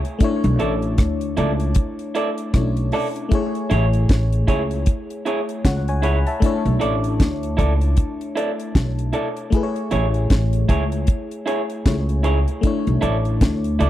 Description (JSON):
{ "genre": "lovers rock reggae", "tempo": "77 BPM", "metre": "4/4", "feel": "swing 60% on 16ths", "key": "unclear", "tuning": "A4 = 440 Hz", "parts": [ { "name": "FM electric piano", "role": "accompaniment", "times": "0.0-13.9 s", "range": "A3 to B5", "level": "-25 LUFS", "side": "left 3 dB", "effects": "chorus, slapback echo" }, { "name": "deep reggae drum kit", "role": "drums", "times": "0.0-13.9 s", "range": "hi-hat, kick drum, rim click, snare drum", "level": "-18 LUFS", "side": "equal", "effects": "none" }, { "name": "upright bass", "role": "bass", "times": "0.4-13.9 s", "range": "A1 to D2", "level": "-20 LUFS", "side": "equal", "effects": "none" }, { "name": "electric guitar through a small old amp", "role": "stabs", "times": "0.6-13.9 s", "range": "E4 to D5", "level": "-26 LUFS", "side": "right 2 dB", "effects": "spring reverb" } ], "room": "little or no reverb", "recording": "dry, close 1970s-style studio recording", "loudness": "-18 LUFS", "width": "side -13 dB against mid", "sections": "0.0-13.9 A section", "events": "none", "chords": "0.2 Bm11; 3.3 Amaj7; 6.4 Bm11; 9.5 Amaj7; 12.6 Bm11 (rootless)", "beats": "| 0.21 0.99 1.76 2.54 | 3.32 4.09 4.87 5.65 | 6.42 7.20 7.98 8.75 | 9.53 10.31 11.08 11.86 | 12.64 13.41" }